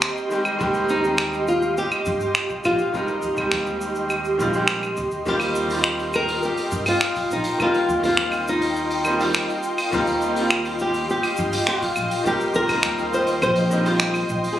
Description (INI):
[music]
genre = sunset chillout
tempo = 103 BPM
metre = 4/4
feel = straight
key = Eb major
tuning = A4 = 440 Hz
[part]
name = flamenco guitar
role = melody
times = 0.0-14.6 s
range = C4 to C5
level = -24 LUFS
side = left 1 dB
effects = ping-pong delay
[part]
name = bright baby grand piano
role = accompaniment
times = 0.0-14.6 s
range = Eb3 to Bb4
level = -26 LUFS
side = equal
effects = auto-pan, ping-pong delay
[part]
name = ethereal airy pad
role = sustained chords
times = 0.0-14.6 s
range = F4 to C6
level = -26 LUFS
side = right 1 dB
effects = ensemble chorus, built-in reverb
[part]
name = soft brush drum kit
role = drums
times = 0.0-14.6 s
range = claves, finger snaps, hi-hat, shaker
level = -25 LUFS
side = equal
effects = none
[part]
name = upright bass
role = bass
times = 0.6-14.4 s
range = Bb1 to G2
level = -30 LUFS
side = equal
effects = none
[part]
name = electronic kick drum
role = drums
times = 0.6-12.8 s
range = none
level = -38 LUFS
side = equal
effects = none
[sound]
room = moderate scoring stage reverb, RT60 1.8 s, studio reverb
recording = recorded on a phone in the room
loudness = -19 LUFS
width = side -12 dB against mid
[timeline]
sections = 0.0-5.3 A section; 5.3-14.6 B section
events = none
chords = 0.3 Abmaj7; 5.3 Eb69